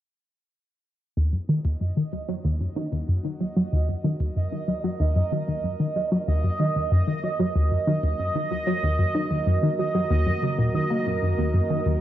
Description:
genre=ambient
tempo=94 BPM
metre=4/4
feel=straight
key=Eb minor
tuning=A4 = 440 Hz
part: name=sweeping resonant pad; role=sustained chords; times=1.2-12.0 s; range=Eb3 to Bb4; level=-34 LUFS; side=equal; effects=chorus, cassette tape
part: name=tight sequenced synth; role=riff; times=1.2-12.0 s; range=Eb2 to Bb3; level=-23 LUFS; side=equal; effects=chorus, cassette tape, ping-pong delay
part: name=bubbling stepped-filter texture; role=texture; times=1.2-12.0 s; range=Eb5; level=-29 LUFS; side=right 4 dB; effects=chorus, built-in reverb, cassette tape
room=moderate spring reverb, RT60 2.6 s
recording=home recording on cassette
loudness=-22 LUFS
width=side -12 dB against mid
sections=1.2-12.0 A section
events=fade-in on analog synth pad 1.2-12.0; filter sweep on synth arpeggio sound 1.2-12.0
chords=1.2 Ebm

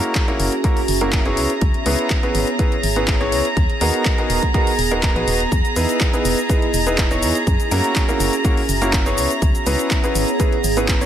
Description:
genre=piano house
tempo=123 BPM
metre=4/4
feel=straight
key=unclear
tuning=A4 = 440 Hz
part: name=warm studio violin section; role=sustained chords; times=0.0-11.1 s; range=G#4 to A#5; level=-24 LUFS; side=right 2 dB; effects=sidechain pumping
part: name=clear upright piano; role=riff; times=0.0-11.1 s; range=A#3 to C#5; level=-22 LUFS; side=equal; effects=sidechain pumping, tape echo
part: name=house drum kit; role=drums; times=0.0-11.1 s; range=cabasa, handclaps, hi-hat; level=-24 LUFS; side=left 2 dB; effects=none
part: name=warbly tape-like pad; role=texture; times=0.0-11.1 s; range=B3 to A#5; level=-25 LUFS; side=right 2 dB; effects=chorus, built-in reverb, sidechain pumping
part: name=electronic kick drum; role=drums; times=0.2-11.0 s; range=none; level=-19 LUFS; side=equal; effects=none
part: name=organ-like FM bass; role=bass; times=0.4-11.1 s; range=D#1 to F#2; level=-23 LUFS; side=equal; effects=sidechain pumping
room=light reverb, digital ambience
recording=none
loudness=-16 LUFS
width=side -10 dB against mid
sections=0.0-11.1 A section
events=none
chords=0.0 F#7; 1.4 C#m7; 3.6 G#m9/D#; 5.5 Emaj7; 7.5 F#7; 9.2 C#m7

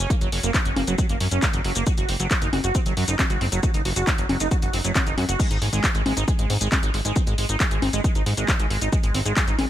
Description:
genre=uplifting trance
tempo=136 BPM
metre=4/4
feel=straight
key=unclear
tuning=A4 = 439 Hz
part: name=liquid acid bass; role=arpeggios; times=0.0-9.6 s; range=F#3 to F#4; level=-28 LUFS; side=right 3 dB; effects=lush chorus, sidechain pumping, digital delay
part: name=fat analog bass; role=bass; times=0.0-9.7 s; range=F#1 to G#2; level=-25 LUFS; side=equal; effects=sidechain pumping
part: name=electronic kick drum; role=drums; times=0.1-9.5 s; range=none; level=-22 LUFS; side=equal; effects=overdrive
part: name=punchy analog drum machine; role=drums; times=0.1-9.7 s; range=congas, crash cymbal, handclaps, hi-hat, shaker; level=-26 LUFS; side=left 2 dB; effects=none
room=digital ambience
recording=none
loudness=-20 LUFS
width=side -12 dB against mid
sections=0.0-9.7 A section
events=none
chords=0.0 F#; 1.9 N.C.; 5.4 G#5

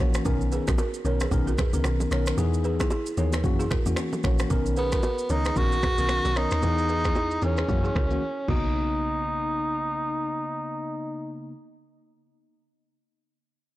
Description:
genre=afrobeats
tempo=113 BPM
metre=4/4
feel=swing 58% on 16ths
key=B major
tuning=A4 = 440 Hz
part: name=bell-like tine electric piano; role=accompaniment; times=0.0-11.5 s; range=C#3 to A#4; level=-31 LUFS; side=left 3 dB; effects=none
part: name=balafon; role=riff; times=0.0-10.3 s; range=E4 to C#5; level=-34 LUFS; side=right 3 dB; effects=digital delay
part: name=deep log drum bass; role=bass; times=0.0-11.5 s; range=A#1 to F#2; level=-27 LUFS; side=equal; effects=none
part: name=afro-pop drum kit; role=drums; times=0.0-8.6 s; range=crash cymbal, finger snaps, kick drum, rim click, shaker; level=-28 LUFS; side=equal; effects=soft clipping on snare
part: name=congas and bongos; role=percussion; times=0.3-9.0 s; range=none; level=-34 LUFS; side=right 2 dB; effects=none
part: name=breathy tenor saxophone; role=melody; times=4.8-11.5 s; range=B3 to F#4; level=-27 LUFS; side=equal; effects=none
room=little or no reverb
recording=blown-out, overdriven recording, overdrive, low-pass filter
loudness=-23 LUFS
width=side -16 dB against mid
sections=0.0-4.5 A section; 4.5-8.8 B section; 8.8-13.0 C section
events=filter sweep 4.5-8.8; silent gap 8.2-8.8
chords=0.3 Bmaj9; 2.4 Emaj7; 3.4 F#7; 4.5 Bmaj9; 6.6 Emaj7; 7.7 F#7; 8.5 Bmaj9

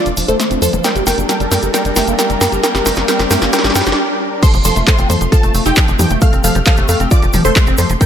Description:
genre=uplifting trance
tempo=134 BPM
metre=4/4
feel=straight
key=unclear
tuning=A4 = 440 Hz
part: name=wide unison pluck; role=melody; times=0.0-8.1 s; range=Eb4 to G5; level=-18 LUFS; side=equal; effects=sidechain pumping, dub echo
part: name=analog string pad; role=sustained chords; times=0.0-8.1 s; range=G3 to Bb4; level=-23 LUFS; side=left 2 dB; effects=ensemble chorus, sidechain pumping
part: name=liquid acid bass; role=arpeggios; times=0.0-8.1 s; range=F3 to G4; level=-22 LUFS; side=right 1 dB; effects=phaser, sidechain pumping, ping-pong delay
part: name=riser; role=sound effects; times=0.0-4.0 s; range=none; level=-24 LUFS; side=right 1 dB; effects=none
part: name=tight sequencer bass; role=bass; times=0.1-8.0 s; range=F1 to G2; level=-18 LUFS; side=equal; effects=sidechain pumping
part: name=punchy analog drum machine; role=drums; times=0.1-8.1 s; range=crash cymbal, handclaps, hi-hat, snare drum, toms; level=-18 LUFS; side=equal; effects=high-pass filter on snare, high-pass filter on hats, high-pass filter on toms, high-pass filter on cymbals, high-pass filter on room
part: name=egg shaker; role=percussion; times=0.1-8.1 s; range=none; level=-24 LUFS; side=left 3 dB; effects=none
part: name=supersaw stab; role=second line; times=4.4-8.1 s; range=G5 to G6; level=-22 LUFS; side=equal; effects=sidechain pumping, ping-pong delay
part: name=electronic kick drum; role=drums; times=4.4-8.1 s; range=none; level=-12 LUFS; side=equal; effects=none
room=light reverb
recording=none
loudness=-11 LUFS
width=side -9 dB against mid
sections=0.0-4.4 A section; 4.4-8.1 B section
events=build-up 0.0-4.4; drum fill 0.0-4.0; riser 0.0-4.0; filter sweep on acid bass 0.0-4.4; break 4.0-4.4; drop 4.4-8.1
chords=0.0 F; 0.8 Gmadd9; 4.4 F

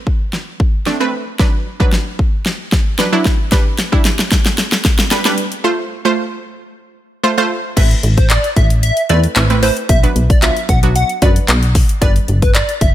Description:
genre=dance-pop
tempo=113 BPM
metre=4/4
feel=straight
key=A minor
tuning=A4 = 440 Hz
part: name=wide unison pluck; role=accompaniment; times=0.0-12.9 s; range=F#3 to C5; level=-18 LUFS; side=right 2 dB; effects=sidechain pumping
part: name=pop drum kit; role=drums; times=0.1-12.9 s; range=crash cymbal, handclaps, hi-hat, kick drum, snare drum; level=-14 LUFS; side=equal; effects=none
part: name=plucky unison lead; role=melody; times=7.8-12.9 s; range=B4 to F#5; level=-19 LUFS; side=equal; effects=sidechain pumping
part: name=plucky analog bass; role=bass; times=7.8-12.9 s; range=G1 to F#2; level=-14 LUFS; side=equal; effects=sidechain pumping
room=digital ambience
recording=none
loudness=-12 LUFS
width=side -13 dB against mid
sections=0.0-7.8 A section; 7.8-12.9 B section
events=build-up 0.0-7.8; drum fill 0.0-5.6; break 5.6-7.8; drop 7.8-12.9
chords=0.0 Amadd9; 1.4 Bm; 3.5 G; 5.6 F; 7.8 Amadd9; 9.9 Bm; 12.0 G

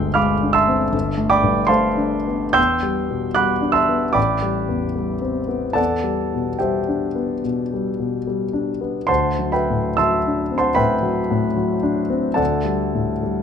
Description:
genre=classical, impressionist solo piano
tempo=73 BPM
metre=4/4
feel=uneven beats, rubato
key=unclear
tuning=A4 = 439 Hz
part: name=warm concert grand piano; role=solo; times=0.0-13.4 s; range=G1 to G6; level=-17 LUFS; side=equal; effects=none
room=light reverb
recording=close, detailed microphones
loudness=-17 LUFS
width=side -7 dB against mid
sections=0.0-13.4 A section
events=none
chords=0.0 Fm6/G; 0.9 Am11/G; 2.6 Em7; 4.2 Am11; 5.8 Em7; 9.1 D13; 12.4 Dsus4

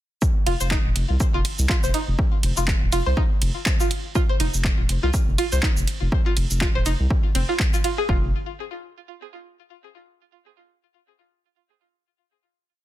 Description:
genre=minimal techno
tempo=122 BPM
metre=4/4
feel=swing 57% on 16ths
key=unclear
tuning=A4 = 440 Hz
part: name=electronic kick drum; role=drums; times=0.2-8.2 s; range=none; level=-22 LUFS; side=equal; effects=overdrive
part: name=punchy analog drum machine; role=drums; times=0.2-8.0 s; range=handclaps, hi-hat, ride cymbal, shaker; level=-28 LUFS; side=right 1 dB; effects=none
part: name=string-like resonator pluck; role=riff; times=0.5-8.3 s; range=C4 to C5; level=-28 LUFS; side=equal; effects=chorus, phaser, cassette tape, sidechain pumping, ping-pong delay
part: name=saturated sub bass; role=bass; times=0.5-8.3 s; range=Eb1 to C2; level=-23 LUFS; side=equal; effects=sidechain pumping
room=little or no reverb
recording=dense, heavily limited modern master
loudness=-19 LUFS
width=side -14 dB against mid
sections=0.2-8.1 drop; 8.1-10.1 final chord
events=drop 0.2-8.1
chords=0.2 F5; 8.1 N.C.

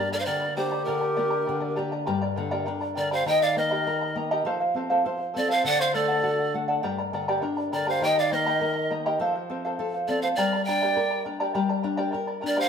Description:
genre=andean folk, Andean ensemble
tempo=101 BPM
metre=2/4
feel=straight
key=G minor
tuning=A4 = 440 Hz
part: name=breathy bright pan flute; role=melody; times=0.0-12.7 s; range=Bb4 to G5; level=-26 LUFS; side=right 2 dB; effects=none
part: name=mellow large quena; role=second line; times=0.0-12.7 s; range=G4 to Eb5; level=-27 LUFS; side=equal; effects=none
part: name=charango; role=accompaniment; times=0.0-12.7 s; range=G4 to Bb5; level=-28 LUFS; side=equal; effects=none
part: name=nylon-string guitar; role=accompaniment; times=0.0-12.7 s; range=G2 to C5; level=-31 LUFS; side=left 4 dB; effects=none
room=wet stone room reverb, RT60 1.4 s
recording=band playing live in one room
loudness=-23 LUFS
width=side -7 dB against mid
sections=0.0-2.1 A section; 2.1-11.5 B section; 11.5-12.7 B section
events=none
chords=0.0 Gm; 3.3 Eb; 4.5 F; 5.6 D; 6.8 Gm; 8.0 Eb; 9.2 F; 10.4 Gm

